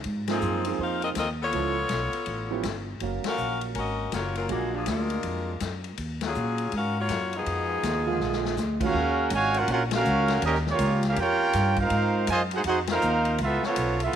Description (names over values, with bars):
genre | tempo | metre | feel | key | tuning
jazz, big band swing | 162 BPM | 4/4 | swing 64% on 8ths | Eb minor | A4 = 441 Hz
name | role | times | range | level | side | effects
upright bass | bass | 0.0-14.2 s | Gb1 to Bb2 | -29 LUFS | equal | none
swinging big-band drum kit | drums | 0.0-14.2 s | crash cymbal, hi-hat, kick drum, ride cymbal, snare drum | -35 LUFS | left 7 dB | none
bright saxophone section | melody | 0.3-8.8 s | D3 to F5 | -29 LUFS | left 4 dB | none
clear concert grand piano | accompaniment | 0.3-5.5, 8.1-8.9 s | D3 to F5 | -32 LUFS | right 10 dB | none
muted trombone section | second line | 7.3-14.1 s | Bb2 to Ab4 | -32 LUFS | right 10 dB | none
warm trumpet section | melody | 8.8-14.2 s | Bb3 to Ab5 | -24 LUFS | right 1 dB | none
room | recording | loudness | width
light reverb, small room reverb | 1960s-style stereo with parts hard left and right | -24 LUFS | side -9 dB against mid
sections
0.0-8.9 A section; 8.9-14.2 B section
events
band accent 0.2, 3.2, 6.2, 9.9, 12.8; drum fill 8.2-8.6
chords
0.1 Ab69; 1.5 Db7alt; 3.0 Gbmaj7; 4.5 Bb7b13; 6.0 Ebm11; 7.5 Fm7b5; 8.2 Bb7; 8.9 Ebm11; 10.4 Eb9; 11.9 Ab69; 13.4 Db7alt